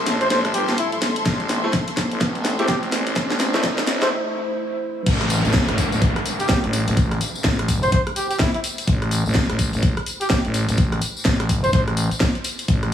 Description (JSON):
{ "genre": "bass house", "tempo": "126 BPM", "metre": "4/4", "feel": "swing 60% on 16ths", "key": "A minor", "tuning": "A4 = 440 Hz", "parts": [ { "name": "dark analog pad", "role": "sustained chords", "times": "0.0-12.9 s", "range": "A3 to D5", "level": "-34 LUFS", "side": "right 1 dB", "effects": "chorus, sidechain pumping" }, { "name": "growling FM bass", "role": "bass", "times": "0.0-12.9 s", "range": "G1 to C2", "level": "-23 LUFS", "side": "equal", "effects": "overdrive, sidechain pumping, high-pass filter" }, { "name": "riser and downlifter", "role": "sound effects", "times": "0.1-8.9 s", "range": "none", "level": "-28 LUFS", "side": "equal", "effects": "none" }, { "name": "warm studio string section", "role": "texture", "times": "0.0-4.1 s", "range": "A4 to C6", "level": "-28 LUFS", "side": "left 3 dB", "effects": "sidechain pumping" }, { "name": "garage drum kit", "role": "drums", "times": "0.1-12.9 s", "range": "crash cymbal, hi-hat, rim click, snare drum", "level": "-24 LUFS", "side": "equal", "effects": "small room ambience" }, { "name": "trumpet with bucket mute", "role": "melody", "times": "0.2-11.8 s", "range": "E4 to C5", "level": "-26 LUFS", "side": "equal", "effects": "dub echo" }, { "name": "electronic kick drum", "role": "drums", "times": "1.3-12.8 s", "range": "none", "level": "-21 LUFS", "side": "equal", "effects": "overdrive, small room ambience" }, { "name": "bright grand piano", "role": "stabs", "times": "1.6-4.1 s", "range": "A3 to E4", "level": "-29 LUFS", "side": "equal", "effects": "none" }, { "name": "tambourine", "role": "percussion", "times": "5.1-12.8 s", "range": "none", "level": "-31 LUFS", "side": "left 3 dB", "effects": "none" } ], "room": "light reverb, small room ambience", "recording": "high-pass filter", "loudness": "-18 LUFS", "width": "side -10 dB against mid", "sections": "0.0-5.1 A section; 5.1-12.9 B section", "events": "build-up 0.0-5.1; drum fill 0.0-4.1; filter sweep on analog synth pad 0.0-5.1; riser 0.1-4.1; break 4.1-5.1; drop 5.1-12.9", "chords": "0.0 Am" }